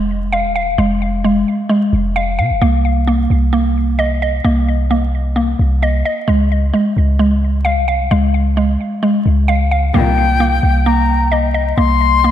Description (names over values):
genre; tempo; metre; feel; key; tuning
hip hop; 131 BPM; 4/4; half-time; C phrygian; A4 = 439 Hz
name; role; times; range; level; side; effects
mallet-like synth pluck; arpeggios; 0.0-12.3 s; Ab3 to F5; -16 LUFS; equal; chorus, low-pass filter, ping-pong delay
warm 808-style bass; bass; 0.0-12.3 s; Eb1 to C3; -15 LUFS; equal; none
mellow silver concert flute; second line; 9.9-12.3 s; G5 to C6; -16 LUFS; left 7 dB; ping-pong delay
dark symphonic string section; stabs; 9.9-10.4 s; C2 to Eb3; -22 LUFS; left 4 dB; none
room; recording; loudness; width
light reverb, small room ambience; vinyl crackle; -12 LUFS; side -11 dB against mid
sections
0.0-9.9 A section; 9.9-12.3 B section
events
none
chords
0.0 Fm; 2.6 Cm7; 6.3 Db; 9.9 Cm7